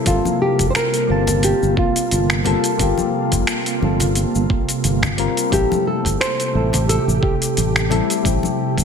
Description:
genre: sunset chillout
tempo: 88 BPM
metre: 4/4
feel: swing 55% on 16ths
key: G dorian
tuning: A4 = 440 Hz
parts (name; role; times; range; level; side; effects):
- soft electric-piano-like synth keys; accompaniment; 0.0-8.8 s; G3 to A5; -23 LUFS; moving between left 7 dB and right 4 dB; chorus, auto-pan, tape echo, slapback echo
- ethereal airy pad; sustained chords; 0.0-8.8 s; C3 to A4; -23 LUFS; right 1 dB; ensemble chorus, built-in reverb
- nylon-string guitar; melody; 0.1-7.9 s; F4 to C5; -22 LUFS; equal; tape echo, slapback echo
- fretless electric bass; bass; 0.1-8.8 s; F1 to A1; -20 LUFS; equal; none
- dusty soul sampler-style drum kit; drums; 0.1-8.8 s; finger snaps, hi-hat, shaker; -23 LUFS; equal; overdrive, studio reverb
- electronic kick drum; drums; 0.1-8.8 s; none; -22 LUFS; right 1 dB; overdrive, studio reverb
- congas; percussion; 0.3-8.6 s; none; -28 LUFS; left 2 dB; none
room: moderate lush hall reverb, RT60 2.0 s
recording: big arena sound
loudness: -16 LUFS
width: side -6 dB against mid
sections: 0.0-8.8 A section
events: none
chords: 0.1 Gm11; 5.5 Am7

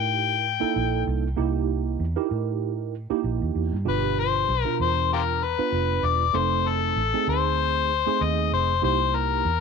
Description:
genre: straight-eighth soul blues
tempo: 97 BPM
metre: 4/4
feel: swing 56% on 16ths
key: unclear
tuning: A4 = 440 Hz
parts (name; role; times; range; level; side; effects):
- overdriven harmonica; melody; 0.0-9.6 s; F4 to G5; -24 LUFS; left 11 dB; none
- tine electric piano; accompaniment; 0.0-9.5 s; B2 to B4; -28 LUFS; right 17 dB; ensemble chorus
- vintage muted fingered electric bass; bass; 0.0-9.6 s; E1 to A2; -27 LUFS; right 1 dB; none
room: light reverb, small room reverb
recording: 1960s-style stereo with parts hard left and right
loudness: -22 LUFS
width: side -5 dB against mid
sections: 0.0-9.6 A section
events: none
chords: 0.0 C7#9; 3.9 G7#9; 6.3 F7#9; 8.8 C7#9

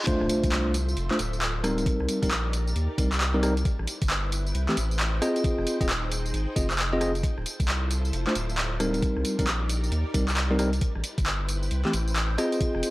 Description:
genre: UK garage, two-step garage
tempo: 134 BPM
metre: 4/4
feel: swing 63% on 16ths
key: D minor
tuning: A4 = 440 Hz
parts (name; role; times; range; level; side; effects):
- riser, reverse cymbal and impact; sound effects; 0.0-1.9 s; none; -35 LUFS; equal; none
- soft string machine; sustained chords; 0.3-12.9 s; Eb4 to G5; -38 LUFS; equal; ensemble chorus, sidechain pumping
- bell-like tine electric piano; stabs; 0.1-12.9 s; E3 to Eb5; -27 LUFS; equal; analog delay
- electronic kick drum; drums; 0.1-12.7 s; none; -26 LUFS; equal; none
- punchy analog drum machine; drums; 0.1-12.9 s; handclaps, hi-hat, rim click, tambourine; -30 LUFS; equal; overdrive
- saturated sub bass; bass; 0.2-12.8 s; D1 to Eb2; -28 LUFS; equal; none
room: little or no reverb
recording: dry, gritty hardware recording, transformer saturation, vinyl crackle, high-pass filter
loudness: -24 LUFS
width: side -19 dB against mid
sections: 0.1-12.9 A section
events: drop 0.1-12.9; impact 0.1-1.9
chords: 0.1 Dm7; 1.9 Cm7; 3.7 Am7; 5.2 Fm7; 7.2 Dm7; 9.0 Cm7; 10.8 Am7; 12.4 Fm7

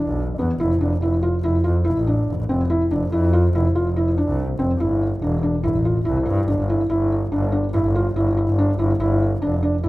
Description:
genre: contemporary instrumental, chamber music in an uneven meter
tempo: 143 BPM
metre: 5/4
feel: straight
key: unclear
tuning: A4 = 440 Hz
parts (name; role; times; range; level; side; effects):
- felt-muted upright piano; arpeggios; 0.0-9.9 s; B3 to F4; -21 LUFS; equal; none
- rich double bass; bass; 0.0-9.9 s; E1 to G2; -20 LUFS; equal; none
room: moderate concert hall reverb, RT60 2.1 s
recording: none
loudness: -18 LUFS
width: side -18 dB against mid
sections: 0.0-4.8 A section; 4.8-9.9 B section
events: none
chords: 0.0 E7(no3); 0.6 Fmaj7(no3); 4.8 Fmaj7 (rootless); 6.9 Em7/G; 9.0 G7(no3)

